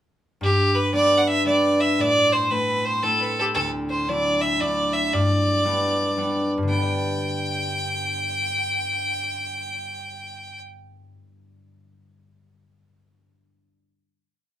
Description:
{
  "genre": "celtic folk, Celtic waltz",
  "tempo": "115 BPM",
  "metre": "3/4",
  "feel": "swing 65% on 8ths",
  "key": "G major",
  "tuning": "A4 = 440 Hz",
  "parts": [
    { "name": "rich fiddle", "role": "melody", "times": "0.4-10.6 s", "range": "G4 to G5", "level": "-22 LUFS", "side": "right 1 dB", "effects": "none" },
    { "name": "concert harp", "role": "accompaniment", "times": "0.4-11.4 s", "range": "D2 to D5", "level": "-25 LUFS", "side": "left 1 dB", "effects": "none" }
  ],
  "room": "moderate studio reverb, RT60 0.5 s",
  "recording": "minimal, uncompressed stereo recording",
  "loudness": "-20 LUFS",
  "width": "side -11 dB against mid",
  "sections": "0.4-6.7 A section; 6.7-9.8 final chord",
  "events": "none",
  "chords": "0.4 G; 2.0 Am; 3.5 Dadd9; 5.1 G",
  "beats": "| 0.40 0.93 1.45 | 1.98 2.50 3.02 | 3.55 4.07 4.59 | 5.12 5.64 6.16 | 6.69 7.21 7.74 | 8.26 8.78 9.31"
}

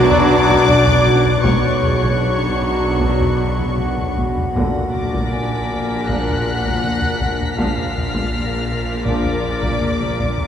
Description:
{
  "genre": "cinematic, suspense film score",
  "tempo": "79 BPM",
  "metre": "4/4",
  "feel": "straight",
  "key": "unclear",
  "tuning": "A4 = 440 Hz",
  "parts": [
    { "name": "warm chamber violin section", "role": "melody", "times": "0.0-10.5 s", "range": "C#6 to Gb6", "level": "-25 LUFS", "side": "left 3 dB", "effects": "none" },
    { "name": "warm chamber violin section", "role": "second line", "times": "0.0-10.5 s", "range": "C#5 to Gb5", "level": "-25 LUFS", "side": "left 1 dB", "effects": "none" },
    { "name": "dark chamber viola section", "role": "accompaniment", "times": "0.0-10.5 s", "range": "Bb3 to Bb4", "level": "-23 LUFS", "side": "right 1 dB", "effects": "none" },
    { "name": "clear trombone section", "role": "sustained chords", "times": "0.0-9.3 s", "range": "F#2 to F#3", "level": "-28 LUFS", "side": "right 1 dB", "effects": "none" },
    { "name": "icy glass pad", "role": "sustained chords", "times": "0.6-10.5 s", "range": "D4 to B5", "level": "-29 LUFS", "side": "left 2 dB", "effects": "chorus, built-in reverb" },
    { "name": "mellow French horn section", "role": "sustained chords", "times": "0.0-9.3 s", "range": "Bb3 to D4", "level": "-27 LUFS", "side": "left 4 dB", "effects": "none" },
    { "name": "dark chamber cello section", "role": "riff", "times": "0.0-10.4 s", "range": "none", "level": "barely audible", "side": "none", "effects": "none" },
    { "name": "warm chamber cello section", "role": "bass", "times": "0.0-10.5 s", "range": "Bb2 to B2", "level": "-24 LUFS", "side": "equal", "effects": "none" },
    { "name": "warm chamber double bass section", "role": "bass", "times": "0.0-10.5 s", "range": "Bb1 to B1", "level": "-26 LUFS", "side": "right 1 dB", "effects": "none" },
    { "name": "bowed-like drone", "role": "drone", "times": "0.1-10.5 s", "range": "Bb1 to B1", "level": "-26 LUFS", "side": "left 1 dB", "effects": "built-in reverb" },
    { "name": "vibraphone with medium hard mallets", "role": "texture", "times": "0.0-10.5 s", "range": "F#4 to Ab5", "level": "-30 LUFS", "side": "left 1 dB", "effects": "none" },
    { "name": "warm chamber violin section", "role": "texture", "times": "0.0-10.2 s", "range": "F#6 to Cb7", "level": "-30 LUFS", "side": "left 3 dB", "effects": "none" },
    { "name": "taiko ensemble", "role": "drums", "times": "0.1-10.5 s", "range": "none", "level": "-24 LUFS", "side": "equal", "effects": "none" }
  ],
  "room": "wet cathedral reverb, RT60 5.4 s",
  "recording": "recorded in a church or concert hall",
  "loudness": "-15 LUFS",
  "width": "side -9 dB against mid",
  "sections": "0.0-10.5 A section",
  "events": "none",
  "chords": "0.0 Bmadd9; 4.5 Bb",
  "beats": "0.66 | 1.44 2.22 3.00 3.77 | 4.55 5.32 6.08 6.83 | 7.58 8.32 9.06 9.81"
}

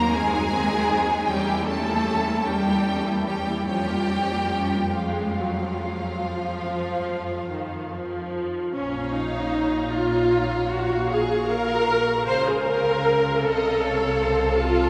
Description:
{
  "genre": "classical, slow romantic movement for string orchestra",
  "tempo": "46-53 BPM (dotted quarters)",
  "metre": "12/8",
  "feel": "rubato",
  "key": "Bb minor",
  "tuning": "A4 = 443 Hz",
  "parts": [
    { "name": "warm symphonic violin section", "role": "melody", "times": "0.0-14.9 s", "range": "F5 to Db6", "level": "-34 LUFS", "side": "equal", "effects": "none" },
    { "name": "warm symphonic violin section", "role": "second line", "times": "0.0-14.9 s", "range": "F4 to A5", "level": "-33 LUFS", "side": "equal", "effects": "none" },
    { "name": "rich symphonic viola section", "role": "accompaniment", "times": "0.0-14.9 s", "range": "Eb3 to C5", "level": "-26 LUFS", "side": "equal", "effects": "none" },
    { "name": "rich symphonic cello section", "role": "bass", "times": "0.0-14.9 s", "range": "Bb2 to Bb3", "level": "-31 LUFS", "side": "equal", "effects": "none" },
    { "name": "rich symphonic double bass section", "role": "bass", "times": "0.0-14.9 s", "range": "Bb1 to F2", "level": "-36 LUFS", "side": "equal", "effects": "none" }
  ],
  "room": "wet cathedral reverb, RT60 6.2 s",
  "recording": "none",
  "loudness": "-24 LUFS",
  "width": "mono",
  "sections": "0.0-8.8 A section; 8.8-14.9 B section",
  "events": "none",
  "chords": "0.0 Cdim/Eb; 1.3 Edim7; 3.7 Bbm/F; 6.3 Ebsus2/F; 8.8 Bbm; 13.4 F7/C",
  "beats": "0.14 1.30 2.48 | 3.69 4.97 6.25 7.49 | 8.75 9.94 11.12 12.29 | 13.45 14.60"
}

